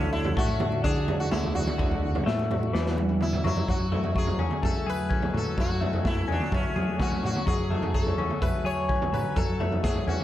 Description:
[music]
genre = psychedelic rock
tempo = 127 BPM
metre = 4/4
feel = straight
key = F# minor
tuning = A4 = 440 Hz
[part]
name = sitar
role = melody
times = 0.0-10.2 s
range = C#4 to C#5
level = -32 LUFS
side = equal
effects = dub echo
[part]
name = tonewheel organ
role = sustained chords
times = 0.0-10.2 s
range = D4 to G#5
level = -40 LUFS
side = right 6 dB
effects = none
[part]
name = clean electric guitar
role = riff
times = 0.0-10.2 s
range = D3 to G#4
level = -31 LUFS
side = left 6 dB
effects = phaser
[part]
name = fingered electric bass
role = bass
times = 0.0-10.2 s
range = D2 to F#3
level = -30 LUFS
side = equal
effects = none
[part]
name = raw garage drum kit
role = drums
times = 0.0-10.2 s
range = kick drum, snare drum, toms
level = -28 LUFS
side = right 1 dB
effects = none
[part]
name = congas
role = percussion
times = 0.5-3.7 s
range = none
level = -42 LUFS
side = right 4 dB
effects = none
[sound]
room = small room ambience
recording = echo-heavy mix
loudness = -24 LUFS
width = side -13 dB against mid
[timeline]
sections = 0.0-3.7 A section; 3.7-10.2 B section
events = drum fill 2.7-3.7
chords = 0.0 Dadd9; 3.7 F#madd9

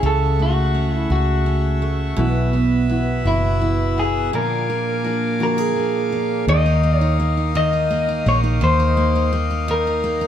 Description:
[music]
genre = six-eight pop ballad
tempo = 56 BPM (dotted quarters)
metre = 6/8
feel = straight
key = unclear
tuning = A4 = 440 Hz
[part]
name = electric guitar at the edge of break-up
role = melody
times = 0.0-10.3 s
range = E4 to Eb5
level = -22 LUFS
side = left 2 dB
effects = none
[part]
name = picked steel-string acoustic guitar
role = accompaniment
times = 0.0-10.3 s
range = A#2 to G#4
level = -22 LUFS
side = right 4 dB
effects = none
[part]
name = pipe organ, foundations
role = sustained chords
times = 0.0-10.3 s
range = A4 to E6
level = -27 LUFS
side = left 4 dB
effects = none
[part]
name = vintage muted fingered electric bass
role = bass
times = 0.0-10.3 s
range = F#1 to Eb2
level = -20 LUFS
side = equal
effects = none
[part]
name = fingerpicked steel-string acoustic guitar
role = arpeggios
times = 2.2-6.5 s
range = A#2 to G#4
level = -27 LUFS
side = left 4 dB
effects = tape echo
[sound]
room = light reverb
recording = none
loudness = -16 LUFS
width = side -10 dB against mid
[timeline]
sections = 0.0-6.5 A section; 6.5-10.3 B section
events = break 4.3-6.5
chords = 0.0 F#m7/C#; 2.2 Bsus4; 4.3 A#7; 6.5 Ebsus2

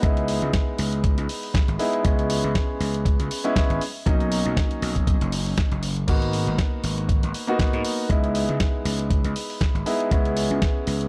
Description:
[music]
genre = nu-disco, nu disco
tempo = 119 BPM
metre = 4/4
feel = swing 55% on 16ths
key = unclear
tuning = A4 = 440 Hz
[part]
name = warm concert grand piano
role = accompaniment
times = 0.0-11.1 s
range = F#3 to F#4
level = -29 LUFS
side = equal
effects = analog delay
[part]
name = gritty slap bass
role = bass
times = 0.0-11.1 s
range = F#1 to G#2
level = -28 LUFS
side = equal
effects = overdrive
[part]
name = dusty soul sampler-style drum kit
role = drums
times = 0.0-11.1 s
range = crash cymbal, hi-hat, snare drum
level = -33 LUFS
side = equal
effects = none
[part]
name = electronic kick drum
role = drums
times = 0.0-10.7 s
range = none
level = -24 LUFS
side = equal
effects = none
[sound]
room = digital ambience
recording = dry, gritty hardware recording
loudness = -23 LUFS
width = mono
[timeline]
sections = 0.0-11.1 A section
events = none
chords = 0.0 C#m9; 2.0 E6; 3.8 Bmaj7; 6.1 G#m9; 8.1 C#m9; 10.1 E6

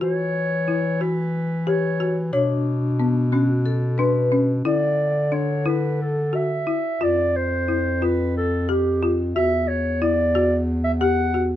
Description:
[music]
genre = contemporary instrumental, chamber music in an uneven meter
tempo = 181 BPM (eighths)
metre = 7/8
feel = straight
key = E dorian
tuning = A4 = 440 Hz
[part]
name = dark clarinet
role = melody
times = 0.0-11.5 s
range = G4 to F#5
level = -24 LUFS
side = equal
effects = none
[part]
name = folk marimba with medium hard mallets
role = arpeggios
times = 0.0-11.6 s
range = B3 to C#5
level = -24 LUFS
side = left 3 dB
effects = none
[part]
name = mellow bass clarinet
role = bass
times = 0.0-11.6 s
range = E2 to E3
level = -23 LUFS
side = equal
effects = none
[part]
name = vibraphone with medium hard mallets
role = second line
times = 2.3-4.4 s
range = D4 to B4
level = -24 LUFS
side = left 3 dB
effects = none
[sound]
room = light reverb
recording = none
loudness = -19 LUFS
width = side -12 dB against mid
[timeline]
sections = 0.0-11.6 A section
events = none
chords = 0.0 Esus2; 2.3 Bmadd9; 4.7 Dsus2; 7.0 Fsus2; 9.4 Esus2

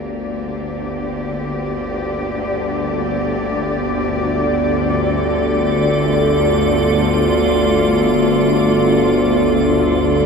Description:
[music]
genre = dark ambient drone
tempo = free time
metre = none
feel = none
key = unclear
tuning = A4 = 438 Hz
[part]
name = rich studio cello section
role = sustained chords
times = 0.0-10.3 s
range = D3 to D5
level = -20 LUFS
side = left 1 dB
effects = none
[part]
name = bowed-like drone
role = drone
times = 0.0-10.3 s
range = G1 to D2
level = -17 LUFS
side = equal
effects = built-in reverb
[part]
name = icy glass pad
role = texture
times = 5.1-10.3 s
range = A4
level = -20 LUFS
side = right 1 dB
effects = chorus, built-in reverb
[sound]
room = wet cathedral reverb, RT60 5.7 s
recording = none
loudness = -15 LUFS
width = side -5 dB against mid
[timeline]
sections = 0.0-10.3 A section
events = fade-in on synth drone 0.0-10.3; fade-in on cello section 0.0-10.3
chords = 0.0 Gm; 4.3 Dm

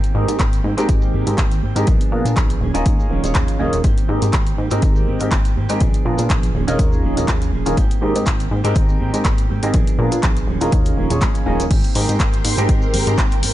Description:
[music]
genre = filtered disco house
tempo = 122 BPM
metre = 4/4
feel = swing 55% on 16ths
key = Ab major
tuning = A4 = 440 Hz
[part]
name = mellow electric guitar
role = riff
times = 0.0-13.5 s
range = Eb3 to Ab4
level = -26 LUFS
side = right 6 dB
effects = spring reverb, sidechain pumping, low-pass filter
[part]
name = punchy analog drum machine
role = drums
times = 0.0-13.5 s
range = crash cymbal, handclaps, hi-hat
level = -25 LUFS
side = equal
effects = sidechain pumping on hats, sidechain pumping on cymbals
[part]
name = maracas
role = percussion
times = 0.0-13.4 s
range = none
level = -38 LUFS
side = equal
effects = sidechain pumping on perc, low-pass filter on perc
[part]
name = warm grand piano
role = accompaniment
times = 0.1-13.2 s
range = Ab3 to Db5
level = -23 LUFS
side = equal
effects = phaser, sidechain pumping, low-pass filter
[part]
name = plucky analog bass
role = bass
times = 0.1-13.5 s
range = Eb1 to Bb2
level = -21 LUFS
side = equal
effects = tube saturation, sidechain pumping, low-pass filter
[part]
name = electronic kick drum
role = drums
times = 0.4-13.3 s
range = none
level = -18 LUFS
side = equal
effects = none
[part]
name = string machine, full ensemble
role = sustained chords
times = 11.7-13.5 s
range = Bb4 to C6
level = -26 LUFS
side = left 1 dB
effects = ensemble chorus, sidechain pumping, low-pass filter
[sound]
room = little or no reverb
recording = nothing above 10.6 kHz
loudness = -15 LUFS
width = side -14 dB against mid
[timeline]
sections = 0.0-13.5 A section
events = none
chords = 0.0 Abmaj9; 1.9 Bb7b9; 2.6 Eb9sus4; 3.8 Abmaj9; 5.8 Bb7b9; 6.5 Eb9sus4; 7.8 Abmaj9; 9.7 Bb7b9; 10.5 Eb9sus4; 11.7 Abmaj9

